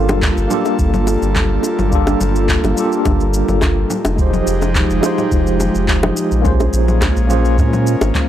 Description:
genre	sunset chillout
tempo	106 BPM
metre	4/4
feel	straight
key	G phrygian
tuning	A4 = 440 Hz
part	bright tine electric piano	accompaniment	0.0-8.3 s	Ab3 to C5	-19 LUFS	right 1 dB	medium stereo tremolo, auto-pan, analog delay
part	airy breathy pad	sustained chords	0.0-8.3 s	F3 to A4	-20 LUFS	equal	chorus
part	warm sub bass	bass	0.0-8.1 s	F1 to Bb2	-17 LUFS	equal	tube saturation
part	electronic congas, shaker and handclaps	drums	0.1-8.3 s	none	-22 LUFS	left 2 dB	studio reverb
part	bongos	percussion	0.1-8.1 s	none	-20 LUFS	left 1 dB	none
part	electronic kick drum	drums	0.2-8.3 s	none	-18 LUFS	equal	studio reverb
room	little or no reverb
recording	dry, gritty hardware recording, transformer saturation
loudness	-13 LUFS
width	side -11 dB against mid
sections	0.0-8.3 A section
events	none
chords	0.0 Gm9; 3.9 Fm9; 6.5 Bbm9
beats	0.23 0.79 1.36 | 1.92 2.49 3.06 3.62 | 4.19 4.75 5.32 5.88 | 6.45 7.02 7.58 8.15

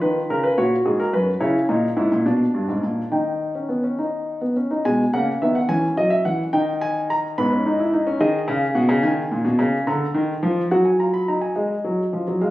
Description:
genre	classical, baroque-style 3-part fugue for grand piano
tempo	71 BPM (dotted quarters)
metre	6/8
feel	straight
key	G# minor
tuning	A4 = 439 Hz
part	warm concert grand piano	solo	0.0-12.5 s	F#2 to B5	-18 LUFS	equal	none
room	wet recital hall reverb, RT60 1.4 s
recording	recorded on a phone in the room, studio reverb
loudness	-18 LUFS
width	side -16 dB against mid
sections	0.0-4.8 A section; 4.8-11.6 B section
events	none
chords	0.0 C#7; 0.6 F#; 1.4 A#dim; 2.3 Gm; 3.1 D#; 4.8 G#m/B; 5.7 C#m/E; 6.5 D#; 7.4 G#m; 8.2 D#m; 9.0 G#m; 9.9 A#7/D; 10.7 D#m/F#; 11.6 G#5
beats	0.58 | 1.41 2.25 | 3.11 3.98 | 4.84 5.69 | 6.53 7.37 | 8.21 9.04 | 9.87 10.71 | 11.56 12.40

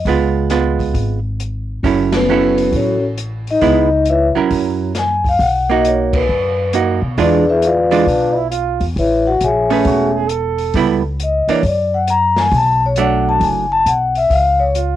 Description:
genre	jazz, small-group swing and bop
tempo	135 BPM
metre	4/4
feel	swing 66% on 8ths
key	F# minor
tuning	A4 = 443 Hz
part	vibraphone with soft mallets	melody	0.0-14.7 s	B3 to A#5	-14 LUFS	left 3 dB	none
part	archtop guitar, miked and amplified	accompaniment	0.1-13.7 s	E3 to B4	-16 LUFS	right 8 dB	cassette tape
part	upright bass	bass	0.1-15.0 s	E1 to B2	-20 LUFS	equal	none
part	open jazz drum kit	drums	0.1-14.9 s	hi-hat, kick drum, ride cymbal, snare drum	-24 LUFS	left 1 dB	none
part	bright trombone	second line	8.1-11.1, 14.8-15.0 s	D4 to A4	-21 LUFS	right 10 dB	cassette tape
room	light reverb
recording	home recording on cassette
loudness	-13 LUFS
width	side -12 dB against mid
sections	0.0-1.8 A section; 1.8-15.0 B section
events	band accent 2.1, 6.1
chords	0.1 Db7; 1.8 F#m7; 3.6 C#m7; 4.5 F#7; 5.4 Bmaj7; 7.2 E7b9; 9.0 Amaj9; 10.7 C#m7b5; 11.6 F#aug; 12.5 Bm7; 14.3 C#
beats	| 0.06 0.50 0.95 1.39 | 1.84 2.28 2.73 3.17 | 3.62 4.06 4.51 4.95 | 5.40 5.84 6.29 6.73 | 7.18 7.62 8.07 8.51 | 8.96 9.40 9.85 10.29 | 10.74 11.18 11.63 12.07 | 12.52 12.96 13.41 13.86 | 14.30 14.75

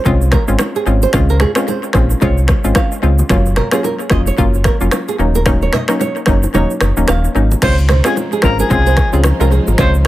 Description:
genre	afrobeats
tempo	111 BPM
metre	4/4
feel	swing 58% on 16ths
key	Db major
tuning	A4 = 440 Hz
part	hollow square pluck	accompaniment	0.1-10.0 s	Gb3 to F4	-18 LUFS	left 2 dB	chorus, analog delay
part	sub bass with octave	bass	0.1-10.1 s	Eb1 to Db2	-14 LUFS	equal	none
part	afro-pop drum kit	drums	0.1-10.1 s	crash cymbal, finger snaps, kick drum, rim click, shaker	-17 LUFS	equal	analog delay
part	congas and bongos	percussion	0.1-9.9 s	none	-25 LUFS	left 1 dB	none
part	flamenco guitar	riff	0.3-9.9 s	Ab4 to F5	-22 LUFS	right 6 dB	analog delay
part	breathy alto saxophone	melody	7.6-9.9 s	Ab4 to C5	-19 LUFS	left 2 dB	analog delay
part	dark studio string section	sustained chords	7.6-10.1 s	F3 to C5	-24 LUFS	left 1 dB	none
room	light reverb, small room ambience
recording	echo-heavy mix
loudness	-11 LUFS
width	side -15 dB against mid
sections	0.0-7.6 A section; 7.6-10.1 B section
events	kick muted 6.5-7.6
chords	0.0 Dbmaj7; 3.3 Gbmaj7; 5.2 Ebm7; 7.6 Dbmaj7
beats	0.06 0.60 | 1.14 1.68 2.22 2.76 | 3.30 3.84 4.38 4.92 | 5.46 6.00 6.54 7.08 | 7.62 8.16 8.71 9.25 | 9.79

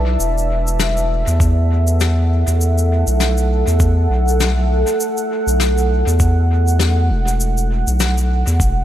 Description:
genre	ambient dub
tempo	100 BPM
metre	4/4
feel	swing 58% on 16ths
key	unclear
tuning	A4 = 440 Hz
part	deep dark ambient pad	sustained chords	0.0-8.8 s	E4 to A5	-21 LUFS	right 1 dB	chorus, built-in reverb
part	round analog bass	bass	0.0-8.8 s	E1 to E2	-15 LUFS	equal	none
part	shaker and snare drum	drums	0.2-8.7 s	none	-24 LUFS	left 4 dB	dub echo
part	electronic kick drum	drums	1.4-8.7 s	none	-17 LUFS	equal	none
room	light reverb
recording	none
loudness	-14 LUFS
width	side -12 dB against mid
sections	0.0-8.8 A section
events	none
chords	0.2 F#m7/E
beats	| 0.20 0.80 1.40 2.00 | 2.60 3.20 3.80 4.40 | 5.00 5.60 6.20 6.80 | 7.40 8.00 8.60

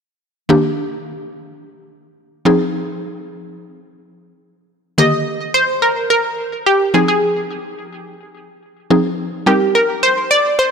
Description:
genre	pop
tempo	107 BPM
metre	4/4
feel	straight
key	Eb major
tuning	A4 = 440 Hz
part	mallet-like synth pluck	accompaniment	0.5-10.7 s	D3 to Bb4	-17 LUFS	equal	chorus
part	wide unison pluck	melody	5.0-10.7 s	G4 to Eb5	-14 LUFS	right 1 dB	tape echo
room	moderate lush hall reverb, RT60 2.7 s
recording	dry, gritty hardware recording, transformer saturation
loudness	-14 LUFS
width	side -6 dB against mid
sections	0.5-5.0 A section; 5.0-10.7 B section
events	none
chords	0.5 Ebmaj7; 2.5 Fm7; 5.0 Ebmaj7; 6.9 Fm7; 9.5 Cm7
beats	| 0.50 1.06 1.62 2.18 | 2.74 3.30 3.86 4.42 | 4.98 5.54 6.11 6.67 | 7.23 7.79 8.35 8.91 | 9.47 10.03 10.59

